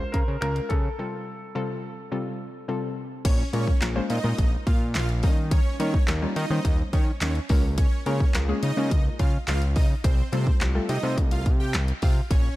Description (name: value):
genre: dance-pop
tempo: 106 BPM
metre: 4/4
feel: straight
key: Bb dorian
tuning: A4 = 440 Hz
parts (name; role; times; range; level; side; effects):
- clear grand piano; melody; 0.0-2.6 s; A4 to C5; -34 LUFS; left 1 dB; tape echo
- soft round pluck; accompaniment; 0.0-11.6 s; C3 to C5; -31 LUFS; left 2 dB; chorus, sidechain pumping
- fat analog bass; bass; 0.0-12.5 s; Bb1 to Eb3; -26 LUFS; equal; sidechain pumping
- house drum kit; drums; 0.1-12.4 s; crash cymbal, finger snaps, handclaps, hi-hat, kick drum, snare drum; -23 LUFS; equal; none
- supersaw chords; melody; 3.3-12.5 s; C4 to G5; -33 LUFS; right 1 dB; sidechain pumping
room: little or no reverb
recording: dark, warm production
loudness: -22 LUFS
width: side -17 dB against mid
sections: 0.0-3.3 A section; 3.3-12.6 B section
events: break 1.0-3.3; drop 3.3-12.6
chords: 0.0 Bbm7; 1.0 Fadd9/C; 3.3 Bbm7; 5.2 Eb7; 7.5 Bbm7/Db; 10.0 Fadd9/C